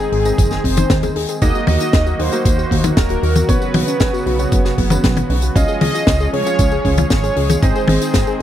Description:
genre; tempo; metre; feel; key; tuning
italo disco; 116 BPM; 4/4; straight; Db major; A4 = 441 Hz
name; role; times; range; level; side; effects
mellow synth brass; melody; 0.0-8.4 s; Ab4 to Eb5; -22 LUFS; right 1 dB; chorus, tape echo
warm analog pad; sustained chords; 0.0-8.4 s; Db3 to Ab4; -24 LUFS; equal; chorus
soft round pluck; arpeggios; 0.0-8.3 s; Bb3 to Db5; -25 LUFS; left 3 dB; chorus, tape echo
clear baby grand piano; stabs; 0.0-8.4 s; Bb3 to F5; -26 LUFS; right 4 dB; vintage 12-bit sampler grit, tape echo
tight funk drum kit; drums; 0.0-8.4 s; hi-hat, snare drum, tambourine, toms; -20 LUFS; left 2 dB; none
chorused synth bass; bass; 0.1-8.2 s; Eb1 to Eb2; -19 LUFS; equal; none
electronic kick drum; drums; 0.4-8.2 s; none; -18 LUFS; equal; none
room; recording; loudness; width
small room reverb; dry, close 1970s-style studio recording; -13 LUFS; side -11 dB against mid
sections
0.0-8.4 A section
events
none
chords
0.0 Ab; 1.4 Ebm; 3.5 Cbsus2; 5.6 Db; 7.6 Ab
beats
0.38 0.90 | 1.42 1.94 2.45 2.97 | 3.49 4.00 4.52 5.04 | 5.56 6.07 6.59 7.11 | 7.62 8.14

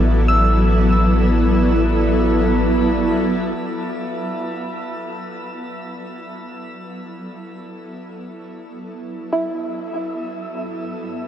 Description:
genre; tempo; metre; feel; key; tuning
ambient; free time; none; none; unclear; A4 = 440 Hz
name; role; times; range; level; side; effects
granular cloud pad; sustained chords; 0.0-11.3 s; G2 to D5; -21 LUFS; equal; built-in reverb
soft round pluck; arpeggios; 0.0-2.8, 9.3-11.3 s; E4 to E6; -26 LUFS; right 1 dB; wide subtle chorus, diffuse ambient delay
round analog bass; bass; 0.0-3.5 s; A1; -18 LUFS; equal; none
room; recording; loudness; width
wet shimmer reverb, RT60 8.3 s; dark, warm production; -16 LUFS; side -10 dB against mid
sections
0.0-3.6 A section; 3.6-11.3 B section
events
fade-in on ambient pad 3.6-11.3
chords
0.0 Asus24; 3.6 D69; 10.1 Gmaj9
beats
free time

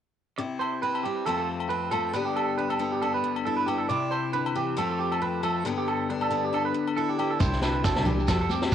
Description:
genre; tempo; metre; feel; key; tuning
highlife guitar band; 137 BPM; 4/4; swing 55% on 16ths; C major; A4 = 441 Hz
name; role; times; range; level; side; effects
picked steel-string acoustic guitar; accompaniment; 0.4-8.7 s; F2 to G4; -29 LUFS; left 6 dB; cassette tape
clean electric guitar; arpeggios; 0.4-8.7 s; G4 to D5; -28 LUFS; right 7 dB; analog chorus, cassette tape, tape echo
agogo bells; percussion; 0.6-8.7 s; none; -36 LUFS; left 9 dB; none
dark double bass; bass; 7.4-8.7 s; C2 to F2; -28 LUFS; equal; none
vintage drum kit; drums; 7.4-8.7 s; kick drum, snare drum; -28 LUFS; equal; cassette tape
shekere; percussion; 7.4-8.7 s; none; -31 LUFS; right 3 dB; none
congas; percussion; 8.1-8.6 s; none; -33 LUFS; right 2 dB; none
room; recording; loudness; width
light reverb, small room ambience; home recording on cassette; -24 LUFS; side -9 dB against mid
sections
0.4-7.4 A section; 7.4-8.7 B section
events
none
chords
0.4 C; 1.3 F; 2.1 G; 3.9 C; 4.8 F; 5.7 G; 7.4 Cadd9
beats
| 0.38 0.82 1.26 1.70 | 2.14 2.58 3.02 3.46 | 3.90 4.34 4.78 5.21 | 5.66 6.09 6.53 6.97 | 7.41 7.85 8.29 8.73

